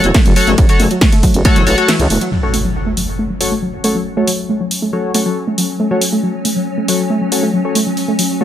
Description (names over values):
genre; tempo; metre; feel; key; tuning
driving peak-time techno; 138 BPM; 4/4; straight; F# minor; A4 = 437 Hz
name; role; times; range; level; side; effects
sync-sweep polysynth; stabs; 0.0-8.4 s; F#4 to C#5; -19 LUFS; left 2 dB; analog chorus, sidechain pumping, dub echo
growling FM bass; bass; 0.0-2.2 s; E1 to C#2; -15 LUFS; equal; sidechain pumping
techno drum kit; drums; 0.0-8.3 s; hi-hat, ride cymbal, snare drum; -18 LUFS; equal; overdrive, sidechain pumping on hats, small room ambience, sidechain pumping on cymbals
warbly dusty pluck; riff; 0.1-8.4 s; E3 to F#4; -18 LUFS; equal; chorus, overdrive, sidechain pumping, dub echo
electronic kick drum; drums; 0.1-1.5 s; none; -11 LUFS; equal; overdrive, small room ambience
swarming drone; drone; 4.0-8.4 s; F#3 to C#4; -22 LUFS; equal; built-in reverb, sidechain pumping
impact; sound effects; 2.3-4.1 s; none; -22 LUFS; equal; none
room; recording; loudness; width
light reverb; none; -12 LUFS; side -11 dB against mid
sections
0.0-2.3 A section; 2.3-8.4 B section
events
drop 0.0-2.3; break 1.9-2.3; impact 2.3-4.1; filter sweep on synth arpeggio sound 2.3-8.4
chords
0.0 F#m